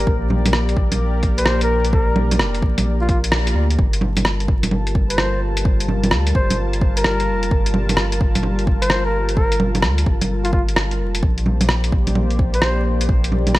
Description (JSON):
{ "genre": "future garage", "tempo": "129 BPM", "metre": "4/4", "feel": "swing 66% on 16ths", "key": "G minor", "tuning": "A4 = 440 Hz", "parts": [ { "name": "trumpet with bucket mute", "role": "melody", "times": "0.0-12.9 s", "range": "F4 to C5", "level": "-25 LUFS", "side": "left 1 dB", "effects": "digital delay" }, { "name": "dark analog pad", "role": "sustained chords", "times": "0.0-13.6 s", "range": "G3 to A5", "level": "-25 LUFS", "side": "equal", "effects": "chorus, sidechain pumping" }, { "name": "warm sub bass", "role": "bass", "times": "0.0-13.6 s", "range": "F1 to D2", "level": "-20 LUFS", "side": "equal", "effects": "sidechain pumping" }, { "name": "electronic kick drum", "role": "drums", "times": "0.1-13.2 s", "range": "none", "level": "-18 LUFS", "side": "equal", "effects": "none" }, { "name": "lo-fi sampler-style drum kit", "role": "drums", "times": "0.3-13.6 s", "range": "bongos, hi-hat, rim click", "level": "-20 LUFS", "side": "right 1 dB", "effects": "none" } ], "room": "little or no reverb", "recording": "vinyl crackle", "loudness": "-16 LUFS", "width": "side -17 dB against mid", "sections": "0.0-3.8 A section; 3.8-13.6 A section", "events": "band accent 3.3", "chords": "0.0 Bb6; 3.8 Gm9; 11.2 Bb69" }